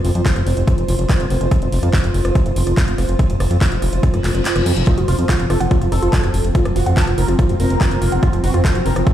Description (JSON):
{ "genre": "psychedelic trance", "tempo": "143 BPM", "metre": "4/4", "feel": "straight", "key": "unclear", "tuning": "A4 = 441 Hz", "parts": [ { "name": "fat analog bass", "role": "bass", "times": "0.0-9.0 s", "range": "F1 to F2", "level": "-17 LUFS", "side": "equal", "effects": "none" }, { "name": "techno drum kit", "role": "drums", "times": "0.0-9.1 s", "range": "handclaps, hi-hat, rim click", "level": "-26 LUFS", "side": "equal", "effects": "none" }, { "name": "granular cloud pad", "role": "texture", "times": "0.0-9.1 s", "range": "F4 to C6", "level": "-24 LUFS", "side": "equal", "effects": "built-in reverb, sidechain pumping" }, { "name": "electronic kick drum", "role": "drums", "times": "0.3-9.1 s", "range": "none", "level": "-15 LUFS", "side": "equal", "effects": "none" }, { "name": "reverse cymbal", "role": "sound effects", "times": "4.2-4.9 s", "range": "none", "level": "-29 LUFS", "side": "left 4 dB", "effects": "none" }, { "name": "wide unison lead", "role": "melody", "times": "4.9-9.1 s", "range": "F3 to Bb4", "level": "-24 LUFS", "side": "equal", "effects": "phaser, sidechain pumping, tape echo" }, { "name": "swarming drone", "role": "sustained chords", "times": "6.2-9.1 s", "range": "F3 to C4", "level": "-26 LUFS", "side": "right 2 dB", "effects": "built-in reverb, sidechain pumping" }, { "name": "woody wave-folded pluck", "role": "riff", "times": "4.9-9.1 s", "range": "Eb4 to Gb5", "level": "-25 LUFS", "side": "right 1 dB", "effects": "chorus, auto-pan, cassette tape, sidechain pumping, tape echo" } ], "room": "light reverb", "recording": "played on a big sound system in a bare room, large studio reverb", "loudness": "-14 LUFS", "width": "side -11 dB against mid", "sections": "0.0-9.1 A section", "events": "reverse cymbal 4.2-4.9; kick drops out 4.5-4.9", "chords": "0.0 F5" }